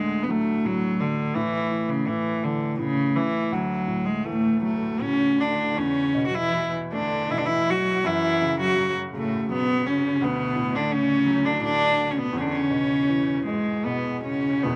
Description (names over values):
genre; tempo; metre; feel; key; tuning
celtic folk, Celtic slow air; 75-87 BPM; 3/4; rubato; unclear; A4 = 443 Hz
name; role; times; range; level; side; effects
rich cello; melody; 0.0-14.8 s; C#3 to F#4; -25 LUFS; equal; none
felt-muted upright piano; accompaniment; 0.0-14.8 s; E1 to A3; -31 LUFS; equal; slapback echo
warm cello; second line; 4.3-14.8 s; G#2 to F#3; -34 LUFS; equal; none
room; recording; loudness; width
little or no reverb; recorded outdoors, with no room sound; -24 LUFS; mono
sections
0.0-14.6 A section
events
none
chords
0.0 D; 1.4 A5; 3.5 Dadd9; 5.8 Esus4; 8.0 F#5; 10.2 D; 12.3 E